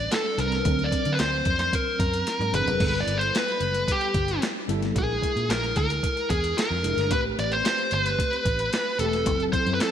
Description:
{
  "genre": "polished 1980s jazz-funk pop",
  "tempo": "112 BPM",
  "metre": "4/4",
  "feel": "straight",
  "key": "unclear",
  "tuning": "A4 = 440 Hz",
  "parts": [
    { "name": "high-gain lead guitar", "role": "melody", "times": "0.0-9.9 s", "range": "G4 to D5", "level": "-25 LUFS", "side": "equal", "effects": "distortion" },
    { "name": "mellow tine electric piano", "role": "accompaniment", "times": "0.0-9.9 s", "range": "F#3 to B4", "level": "-31 LUFS", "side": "left 1 dB", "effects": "medium stereo tremolo, lush chorus" },
    { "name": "vintage muted fingered electric bass", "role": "bass", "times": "0.0-9.8 s", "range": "E1 to D3", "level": "-29 LUFS", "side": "equal", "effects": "none" },
    { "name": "boom bap sampler-style drum kit", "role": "drums", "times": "0.1-9.9 s", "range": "crash cymbal, hi-hat, kick drum, snare drum, toms", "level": "-28 LUFS", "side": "equal", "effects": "gated reverb" }
  ],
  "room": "moderate lush hall reverb, RT60 2.4 s",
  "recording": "bright 1980s-style digital production",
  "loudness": "-22 LUFS",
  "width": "side -9 dB against mid",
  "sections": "0.0-9.9 A section",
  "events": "drum fill 2.3-2.8",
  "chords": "0.0 Am11; 0.7 D7alt; 2.8 G69; 5.0 A#7#11; 7.1 Am9; 9.3 F#m7b5"
}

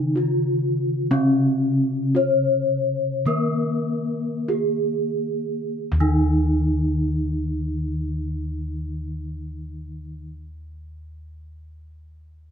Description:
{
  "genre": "Javanese gamelan",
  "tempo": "43-66 BPM",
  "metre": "4/4",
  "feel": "straight",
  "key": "Eb slendro",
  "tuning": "A4 = 439 Hz",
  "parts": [
    { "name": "gamelan-type bronze metallophone", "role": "melody", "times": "0.0-10.3 s", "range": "Db4-40c to Db5-40c", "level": "-24 LUFS", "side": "equal", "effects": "none" },
    { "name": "gamelan-type bronze metallophone", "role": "accompaniment", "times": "0.0-10.3 s", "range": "Db3-40c to Bb3+20c", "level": "-27 LUFS", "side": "left 2 dB", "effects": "none" },
    { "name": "gamelan-type bossed gongs", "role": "bass", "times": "0.0-10.2 s", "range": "Eb2 to Db5-40c", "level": "-26 LUFS", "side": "equal", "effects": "none" }
  ],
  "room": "light reverb",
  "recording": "close, detailed microphones",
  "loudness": "-20 LUFS",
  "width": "side -7 dB against mid",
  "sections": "0.0-5.8 A section; 5.8-11.4 B section",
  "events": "slowing down 0.0-5.8",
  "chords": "none"
}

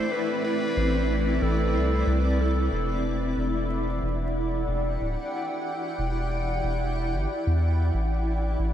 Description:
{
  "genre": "ambient dub",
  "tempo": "92 BPM",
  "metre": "4/4",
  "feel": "swing 56% on 16ths",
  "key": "E minor",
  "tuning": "A4 = 438 Hz",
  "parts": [
    { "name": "clear clarinet", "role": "melody", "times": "0.0-2.4 s", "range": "A4 to C5", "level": "-32 LUFS", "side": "left 1 dB", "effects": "dub echo" },
    { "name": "granular cloud pad", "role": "sustained chords", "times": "0.0-8.7 s", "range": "A3 to G5", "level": "-28 LUFS", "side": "equal", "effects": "built-in reverb" },
    { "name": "soft dub sub bass", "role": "bass", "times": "0.8-8.7 s", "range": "D1 to E2", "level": "-26 LUFS", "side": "equal", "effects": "none" }
  ],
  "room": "light reverb, small room ambience",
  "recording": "vinyl crackle",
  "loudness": "-24 LUFS",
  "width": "side -10 dB against mid",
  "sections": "0.0-2.7 A section; 2.7-8.7 B section",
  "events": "none",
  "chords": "0.0 Am; 2.7 Em9; 7.9 Am7"
}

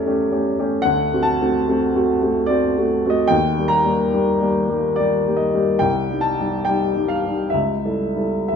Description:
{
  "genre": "classical, romantic nocturne for solo piano",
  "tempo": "58-74 BPM",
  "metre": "3/4",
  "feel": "rubato",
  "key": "unclear",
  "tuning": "A4 = 440 Hz",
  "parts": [
    { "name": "warm upright piano", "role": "solo", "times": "0.0-8.6 s", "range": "C2 to Bb5", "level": "-17 LUFS", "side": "left 1 dB", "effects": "none" }
  ],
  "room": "wet stone room reverb, RT60 1.1 s",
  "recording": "none",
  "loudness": "-17 LUFS",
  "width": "side -7 dB against mid",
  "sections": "0.0-8.6 A section",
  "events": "none",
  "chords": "0.0 A7/E; 0.9 D7; 3.3 Eb; 5.8 Cm; 7.5 A7/C#"
}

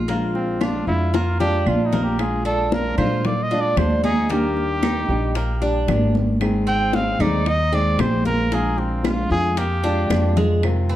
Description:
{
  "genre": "latin, Cuban son and guajira",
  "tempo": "114 BPM",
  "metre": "4/4",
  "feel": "straight",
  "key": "unclear",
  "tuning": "A4 = 440 Hz",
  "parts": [
    { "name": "nylon-string guitar", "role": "accompaniment", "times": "0.0-11.0 s", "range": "C3 to Ab4", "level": "-26 LUFS", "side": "left 2 dB", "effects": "none" },
    { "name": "Cuban tres", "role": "arpeggios", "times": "0.0-11.0 s", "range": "Ab3 to F4", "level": "-26 LUFS", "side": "right 2 dB", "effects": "none" },
    { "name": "upright bass", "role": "bass", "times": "0.0-11.0 s", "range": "Ab1 to Bb2", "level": "-23 LUFS", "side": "equal", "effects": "none" },
    { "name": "bongos", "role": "percussion", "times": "0.1-10.9 s", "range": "none", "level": "-28 LUFS", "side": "left 6 dB", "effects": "none" },
    { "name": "congas", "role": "percussion", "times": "0.1-11.0 s", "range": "none", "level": "-26 LUFS", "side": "equal", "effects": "none" },
    { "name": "warm trumpet", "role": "melody", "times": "0.4-11.0 s", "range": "C4 to G5", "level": "-24 LUFS", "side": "equal", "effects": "none" },
    { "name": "claves", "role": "percussion", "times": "0.6-10.9 s", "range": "none", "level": "-37 LUFS", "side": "right 8 dB", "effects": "none" }
  ],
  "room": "moderate large studio reverb, RT60 1.2 s",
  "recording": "dark, warm production",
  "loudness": "-18 LUFS",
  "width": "side -13 dB against mid",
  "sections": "0.0-10.6 A section",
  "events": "trumpet solo 0.0-10.6; drum fill 1.1-2.2, 10.1-10.6",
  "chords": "0.1 Bb7; 4.3 Ebmaj7; 6.4 Ab; 8.5 Bb7"
}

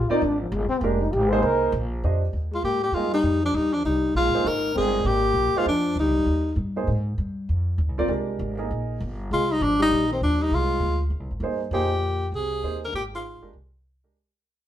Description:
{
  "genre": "modal jazz",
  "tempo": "198 BPM",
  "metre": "4/4",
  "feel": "swing 62% on 8ths",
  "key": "F dorian",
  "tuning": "A4 = 440 Hz",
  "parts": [
    { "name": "breathy trombone", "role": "second line", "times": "0.0-6.6, 9.3-13.5 s", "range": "Ab2 to C5", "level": "-28 LUFS", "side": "left 1 dB", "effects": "none" },
    { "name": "upright bass", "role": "bass", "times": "0.0-14.1 s", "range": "F1 to Ab2", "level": "-26 LUFS", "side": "equal", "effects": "none" },
    { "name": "warm concert grand piano", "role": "accompaniment", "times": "0.1-9.0, 11.4-14.1 s", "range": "Ab3 to G5", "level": "-27 LUFS", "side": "right 4 dB", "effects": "none" },
    { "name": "breathy tenor saxophone", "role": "melody", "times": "2.5-6.5, 9.3-13.5 s", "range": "C4 to Bb4", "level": "-23 LUFS", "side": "left 1 dB", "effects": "none" }
  ],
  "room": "moderate studio reverb, RT60 0.8 s",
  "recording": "band playing live in one room",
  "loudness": "-21 LUFS",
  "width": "side -11 dB against mid",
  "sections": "0.0-2.0 A section; 2.0-11.7 B section; 11.7-14.1 C section",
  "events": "trombone solo 0.0-2.0; fade-out 11.7-14.1",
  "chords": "0.0 Fm11"
}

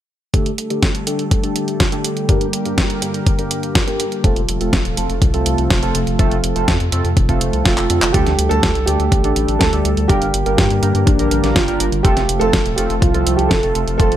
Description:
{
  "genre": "italo disco",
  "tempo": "123 BPM",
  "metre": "4/4",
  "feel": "straight",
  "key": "unclear",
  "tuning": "A4 = 440 Hz",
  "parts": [
    { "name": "warm analog pad", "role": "sustained chords", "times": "0.3-14.2 s", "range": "C3 to Bb4", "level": "-22 LUFS", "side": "equal", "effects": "chorus" },
    { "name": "chorused polysynth", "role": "stabs", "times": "0.3-14.2 s", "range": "G2 to Bb4", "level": "-23 LUFS", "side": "right 2 dB", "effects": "cassette tape, digital delay" },
    { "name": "clean 12-bit digital drum machine", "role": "drums", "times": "0.3-14.2 s", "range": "handclaps, hi-hat, snare drum", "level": "-21 LUFS", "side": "equal", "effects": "none" },
    { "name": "electronic kick drum", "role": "drums", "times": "0.3-14.1 s", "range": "none", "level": "-17 LUFS", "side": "equal", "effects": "overdrive" },
    { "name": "round analog bass", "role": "bass", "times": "4.2-14.2 s", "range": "Eb1 to G2", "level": "-20 LUFS", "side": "equal", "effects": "none" },
    { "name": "dark concert grand piano", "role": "melody", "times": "7.6-14.2 s", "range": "D4 to A4", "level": "-20 LUFS", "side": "right 3 dB", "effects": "digital delay" }
  ],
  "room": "light reverb",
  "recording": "none",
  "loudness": "-14 LUFS",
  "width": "side -11 dB against mid",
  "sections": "0.3-8.1 A section; 8.1-14.2 B section",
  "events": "filter sweep on analog polysynth 0.3-8.1; drum fill 7.8-8.1",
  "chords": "0.3 Dsus4; 2.3 Gm; 4.2 F; 8.1 Dsus4; 10.1 Gm; 12.0 F"
}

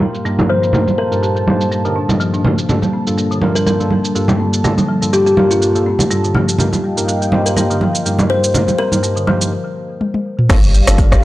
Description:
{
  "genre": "afro house",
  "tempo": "123 BPM",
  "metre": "4/4",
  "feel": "swing 55% on 16ths",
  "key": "unclear",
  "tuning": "A4 = 439 Hz",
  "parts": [
    { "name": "dark analog pad", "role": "sustained chords", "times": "0.0-11.2 s", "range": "G3 to A5", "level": "-21 LUFS", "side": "equal", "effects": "chorus, sidechain pumping" },
    { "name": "tine electric piano", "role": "stabs", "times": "0.0-11.2 s", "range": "G2 to Eb5", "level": "-20 LUFS", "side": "equal", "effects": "sidechain pumping" },
    { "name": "congas", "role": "percussion", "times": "0.0-9.4 s", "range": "none", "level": "-17 LUFS", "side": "right 2 dB", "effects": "none" },
    { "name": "afro-pop drum kit", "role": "drums", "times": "0.1-11.2 s", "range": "crash cymbal, hi-hat, rim click, shaker, toms", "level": "-20 LUFS", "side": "equal", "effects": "studio ambience" },
    { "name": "folk marimba with medium hard mallets", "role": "arpeggios", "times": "0.3-11.2 s", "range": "D3 to G4", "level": "-24 LUFS", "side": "left 2 dB", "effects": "sidechain pumping, analog delay" },
    { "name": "kalimba", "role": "melody", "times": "0.5-9.2 s", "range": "F4 to C5", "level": "-19 LUFS", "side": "left 2 dB", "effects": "analog delay" },
    { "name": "warm sub bass", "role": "bass", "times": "10.5-11.2 s", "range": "G1", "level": "-13 LUFS", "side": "equal", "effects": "sidechain pumping" },
    { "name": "electronic kick drum", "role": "drums", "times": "10.5-11.2 s", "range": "none", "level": "-13 LUFS", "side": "equal", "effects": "studio ambience" },
    { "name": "impact", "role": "sound effects", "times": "10.6-11.2 s", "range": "none", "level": "-20 LUFS", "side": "equal", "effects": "none" }
  ],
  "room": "light reverb",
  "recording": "dry, gritty hardware recording, cassette tape, low-pass filter",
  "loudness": "-12 LUFS",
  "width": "side -16 dB against mid",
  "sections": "0.0-10.5 A section",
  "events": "filter sweep 0.0-10.5; break 9.5-10.5; drum fill 10.0-10.5; impact 10.5-11.2",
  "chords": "0.0 Eb/G; 2.7 Gm7; 6.6 Eb/G; 10.5 Gm7"
}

